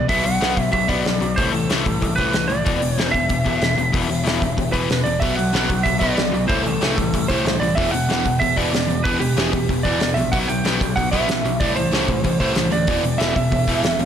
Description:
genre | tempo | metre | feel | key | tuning
punk rock | 188 BPM | 4/4 | straight | unclear | A4 = 444 Hz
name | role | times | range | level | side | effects
lightly driven lead guitar | melody | 0.0-14.1 s | G4 to G5 | -22 LUFS | right 4 dB | slapback echo
overdriven electric guitar | riff | 0.0-14.1 s | E2 to B3 | -22 LUFS | left 6 dB | none
growling picked electric bass | bass | 0.0-14.1 s | E1 to D2 | -27 LUFS | equal | overdrive
loose indie drum kit | drums | 0.1-14.1 s | hi-hat, kick drum, snare drum | -23 LUFS | equal | none
distorted electric guitar | riff | 5.2-14.1 s | E2 to B3 | -26 LUFS | right 11 dB | overdrive
room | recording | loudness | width
moderate lush hall reverb, RT60 1.7 s, studio reverb | big arena sound | -17 LUFS | side -9 dB against mid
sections
0.0-14.1 A section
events
none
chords
0.1 Bm; 1.4 Am/C; 2.7 E5; 5.2 Bm; 6.5 Am/C; 7.8 Em; 10.3 B5; 11.6 Am/C; 12.9 E5

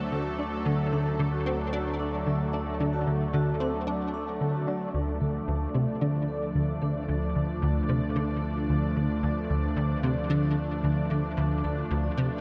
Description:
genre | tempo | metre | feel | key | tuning
ambient, sequencer-driven space music | 112 BPM | 4/4 | straight | D dorian from 4.9 s | A4 = 440 Hz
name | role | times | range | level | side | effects
lush unison pad | sustained chords | 0.0-12.4 s | F3 to D5 | -33 LUFS | equal | chorus, phaser
analog drone | bass | 0.0-12.4 s | D2 | -38 LUFS | equal | chorus
vibraphone with medium mallets | arpeggios | 0.1-12.3 s | F#3 to D5 | -41 LUFS | equal | delay
plucky analog bass | riff | 0.1-12.3 s | D2 to D4 | -30 LUFS | equal | ensemble chorus, delay
wind-like tuned noise texture | texture | 5.9-12.4 s | B4 | -53 LUFS | equal | none
room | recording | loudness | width
moderate huge ambient reverb, RT60 7.5 s | dark, warm production | -28 LUFS | mono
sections
0.0-4.9 A section; 4.9-12.4 B section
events
none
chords
0.0 D; 4.9 Dm

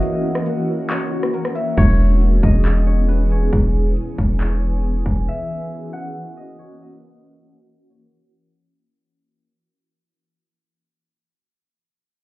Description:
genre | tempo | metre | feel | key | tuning
hip hop, atmospheric cloud-rap | 137 BPM | 4/4 | half-time | unclear | A4 = 441 Hz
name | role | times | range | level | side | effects
concert harp | melody | 0.0-9.8 s | B4 to F#5 | -31 LUFS | left 1 dB | low-pass filter, tape echo
shimmering ambient pad | sustained chords | 0.0-8.7 s | E3 to G#4 | -24 LUFS | equal | chorus, built-in reverb, phaser, sidechain pumping
soft round pluck | arpeggios | 0.0-1.8 s | A#3 to E5 | -27 LUFS | left 2 dB | chorus, low-pass filter, tape echo
trap drum kit | drums | 0.0-5.2 s | crash cymbal, handclaps, hi-hat, kick drum, rim click | -19 LUFS | equal | overdrive
long sustained 808-style bass | bass | 1.8-5.3 s | E1 | -16 LUFS | equal | none
room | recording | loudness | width
digital ambience | heard muffled through a wall, club reverb, EQ, low-pass filter | -16 LUFS | side -19 dB against mid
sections
0.0-1.8 A section; 1.8-8.8 B section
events
break 0.0-1.8; fade-out 1.8-8.8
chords
0.0 F#7; 1.8 E6; 5.3 F#7

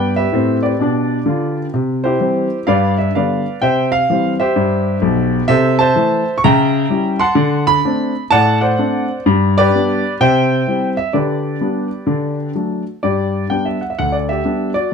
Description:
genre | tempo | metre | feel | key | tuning
jazz, stride piano | 127 BPM | 4/4 | swing 65% on 8ths | C major, G major from 5.5 s | A4 = 438 Hz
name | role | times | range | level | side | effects
warm concert grand piano | solo | 0.0-14.9 s | B1 to C#6 | -14 LUFS | equal | none
room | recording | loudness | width
moderate studio reverb, RT60 0.8 s | dark, warm production | -14 LUFS | side -6 dB against mid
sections
0.0-13.0 A section; 13.0-14.9 B section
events
none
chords
0.0 G7; 1.7 C; 2.7 G7; 3.6 C; 5.5 Am/C; 6.4 C#dim7; 7.4 D7; 9.3 G; 10.2 C; 11.2 G/D; 12.1 D; 13.0 G

